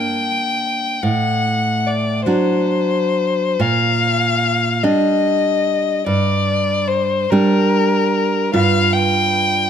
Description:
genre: romantic duo for violin and classical guitar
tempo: 48 BPM (dotted quarters)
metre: 6/8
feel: rubato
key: G minor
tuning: A4 = 439 Hz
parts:
  - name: rich violin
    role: melody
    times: 0.0-9.7 s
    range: Bb4 to G5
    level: -17 LUFS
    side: left 5 dB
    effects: none
  - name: nylon-string guitar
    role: accompaniment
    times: 0.0-9.7 s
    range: G2 to F4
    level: -18 LUFS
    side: right 3 dB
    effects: none
room: light reverb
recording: close, detailed microphones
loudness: -15 LUFS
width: side -8 dB against mid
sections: 0.0-9.7 A section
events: none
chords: 0.0 Gm; 1.0 D7/A; 3.6 Gm/Bb; 6.1 Gm; 8.5 G7

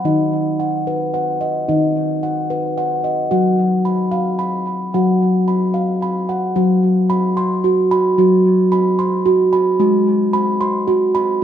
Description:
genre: world meditative, meditative tuned percussion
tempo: 74 BPM (dotted quarters)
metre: 6/8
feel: straight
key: unclear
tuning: A4 = 441 Hz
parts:
  - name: steel tongue drum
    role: solo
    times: 0.0-11.4 s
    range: Eb3 to C6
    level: -14 LUFS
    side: equal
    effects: tape echo
room: wet scoring stage reverb, RT60 1.7 s, small room reverb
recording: none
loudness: -14 LUFS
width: side -9 dB against mid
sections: 0.0-6.6 A section; 6.6-11.4 B section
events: none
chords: 0.1 Ebm; 3.3 Gbsus4; 9.8 Abm

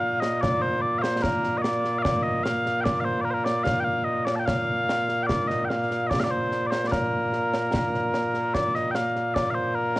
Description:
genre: scottish traditional, Scottish pipe music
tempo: 74 BPM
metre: 2/4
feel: straight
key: Bb major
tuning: A4 = 440 Hz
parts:
  - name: mellow small bagpipes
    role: melody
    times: 0.0-10.0 s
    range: Bb2 to A5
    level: -23 LUFS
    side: equal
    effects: cassette tape
  - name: concert snare drum and concert bass drum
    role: drums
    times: 0.2-10.0 s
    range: none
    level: -29 LUFS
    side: equal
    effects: cassette tape
room: light reverb, small room ambience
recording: home recording on cassette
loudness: -22 LUFS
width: side -19 dB against mid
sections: 0.0-8.5 A section; 8.5-10.0 A section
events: none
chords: none

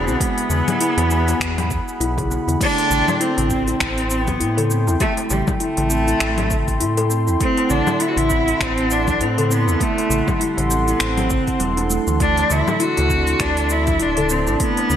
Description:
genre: organic downtempo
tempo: 100 BPM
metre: 4/4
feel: swing 58% on 16ths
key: A dorian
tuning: A4 = 438 Hz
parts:
  - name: rich cello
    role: melody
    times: 0.0-15.0 s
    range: G3 to F#4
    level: -21 LUFS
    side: equal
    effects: digital delay
  - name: warm analog pad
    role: sustained chords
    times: 0.0-15.0 s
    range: D4 to C6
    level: -25 LUFS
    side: right 1 dB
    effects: chorus, sidechain pumping
  - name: kalimba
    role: arpeggios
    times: 0.0-14.7 s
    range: E3 to A4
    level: -24 LUFS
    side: left 1 dB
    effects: low-pass filter
  - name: round analog bass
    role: bass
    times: 0.0-15.0 s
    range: D1 to A2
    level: -22 LUFS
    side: equal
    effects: none
  - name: quartz singing bowl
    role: texture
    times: 0.0-2.6 s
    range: none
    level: barely audible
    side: none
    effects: none
  - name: organic electronic drum kit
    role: drums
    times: 0.1-15.0 s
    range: congas, crash cymbal, finger snaps, hi-hat, shaker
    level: -25 LUFS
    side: left 2 dB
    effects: gated reverb
  - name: electronic kick drum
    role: drums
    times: 0.2-14.7 s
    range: none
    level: -25 LUFS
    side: equal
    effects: overdrive
  - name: darbuka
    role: percussion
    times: 0.2-15.0 s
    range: none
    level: -29 LUFS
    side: left 3 dB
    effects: none
room: moderate plate reverb, RT60 2.2 s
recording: bright 1980s-style digital production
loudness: -16 LUFS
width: side -9 dB against mid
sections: 0.0-2.6 A section; 2.6-15.0 A section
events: none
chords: 0.0 Eadd9; 2.6 Am7; 12.2 D5

